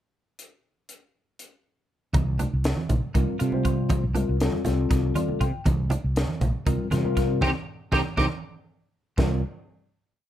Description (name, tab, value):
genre	electric jazz fusion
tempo	239 BPM (eighths)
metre	7/8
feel	straight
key	C dorian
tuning	A4 = 442 Hz
part	crisp fusion drum kit	drums	0.4-9.3 s	crash cymbal, hi-hat, kick drum, snare drum	-28 LUFS	equal	none
part	clean electric guitar	stabs	2.1-9.3 s	C4 to G4	-31 LUFS	right 2 dB	analog chorus
part	mellow fretless electric bass	bass	2.1-9.4 s	Bb1 to C3	-25 LUFS	equal	none
part	congas	percussion	2.1-9.4 s	none	-30 LUFS	right 2 dB	none
part	mellow tine electric piano	accompaniment	3.1-9.4 s	G3 to G5	-27 LUFS	left 3 dB	wide subtle chorus
room	little or no reverb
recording	none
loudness	-22 LUFS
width	side -12 dB against mid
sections	0.4-2.1 pickup bar; 2.1-9.2 groove; 9.2-10.3 final chord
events	tine electric piano fill 4.9-5.7; band accent 7.4-9.2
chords	0.4 N.C.; 2.1 Cm11; 9.2 C7sus4